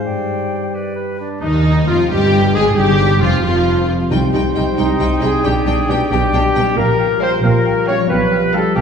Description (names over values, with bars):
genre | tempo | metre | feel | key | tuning
classical | 90 BPM (dotted quarters) | 6/8 | straight | C minor | A4 = 440 Hz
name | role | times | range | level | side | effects
bright clarinet | second line | 0.0-8.8 s | D4 to Db5 | -23 LUFS | left 2 dB | none
mellow hollow silver concert flute | second line | 0.0-8.8 s | Eb4 to G5 | -25 LUFS | left 2 dB | none
concert harp | arpeggios | 0.0-8.8 s | G2 to D6 | -24 LUFS | left 3 dB | none
warm oboe | second line | 0.1-8.8 s | Eb4 to F5 | -26 LUFS | equal | none
mellow French horn section | sustained chords | 0.1-8.8 s | Eb3 to F4 | -23 LUFS | left 2 dB | none
dark trumpet section | stabs | 1.2-8.8 s | D4 to Db5 | -20 LUFS | equal | none
rich studio violin section | melody | 1.4-8.7 s | Eb4 to G5 | -24 LUFS | left 3 dB | none
clear studio violin section | second line | 1.4-8.7 s | Db4 to Ab4 | -27 LUFS | left 2 dB | none
clear symphonic viola section | accompaniment | 1.4-8.7 s | Eb3 to Ab3 | -24 LUFS | equal | none
rich studio double bass section | bass | 1.4-8.8 s | F1 to Eb2 | -19 LUFS | right 2 dB | none
rich symphonic cello section | bass | 1.4-8.8 s | C2 to B2 | -21 LUFS | right 2 dB | none
timpani | percussion | 4.1-4.7 s | C3 | -24 LUFS | right 1 dB | none
room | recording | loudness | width
wet scoring stage reverb, RT60 1.9 s | heard from further back in the room | -13 LUFS | side -6 dB against mid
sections
0.0-1.4 A section; 1.4-8.8 B section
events
none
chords
0.1 G; 1.4 Cm; 2.8 G7; 4.1 Cm; 5.5 G/B; 6.8 Gm7b5/Bb; 8.1 G7/B